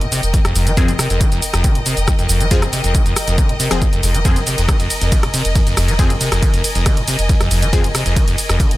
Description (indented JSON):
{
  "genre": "driving peak-time techno",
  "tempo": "138 BPM",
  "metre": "4/4",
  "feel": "straight",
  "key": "F minor",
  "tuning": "A4 = 439 Hz",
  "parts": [
    { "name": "acid bass, saw", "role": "riff", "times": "0.0-8.8 s", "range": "F2 to Ab3", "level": "-21 LUFS", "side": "equal", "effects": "lush chorus, sidechain pumping, tape echo" },
    { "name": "saturated sub bass", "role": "bass", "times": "0.0-8.8 s", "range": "F1", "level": "-20 LUFS", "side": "equal", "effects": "tube saturation, sidechain pumping, low-pass filter" },
    { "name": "punchy analog drum machine", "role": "drums", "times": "0.0-8.8 s", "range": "hi-hat, ride cymbal, rim click, shaker", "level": "-21 LUFS", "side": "right 1 dB", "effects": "none" },
    { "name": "warm symphonic string section", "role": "texture", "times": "0.0-8.8 s", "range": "Bb4 to Ab5", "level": "-23 LUFS", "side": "left 1 dB", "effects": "sidechain pumping" },
    { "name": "electronic kick drum", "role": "drums", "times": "0.3-8.7 s", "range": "none", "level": "-16 LUFS", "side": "equal", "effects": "none" },
    { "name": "supersaw stab", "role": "stabs", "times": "0.8-7.9 s", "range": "F3 to Ab4", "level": "-24 LUFS", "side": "left 3 dB", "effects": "phaser, sidechain pumping, tape echo" }
  ],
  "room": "digital ambience",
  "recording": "none",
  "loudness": "-13 LUFS",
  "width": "side -17 dB against mid",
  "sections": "0.0-8.8 A section",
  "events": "none",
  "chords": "0.0 Fm",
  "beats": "0.34 | 0.77 1.21 1.64 2.08 | 2.51 2.95 3.38 3.81 | 4.25 4.68 5.12 5.55 | 5.99 6.42 6.86 7.29 | 7.73 8.16 8.60"
}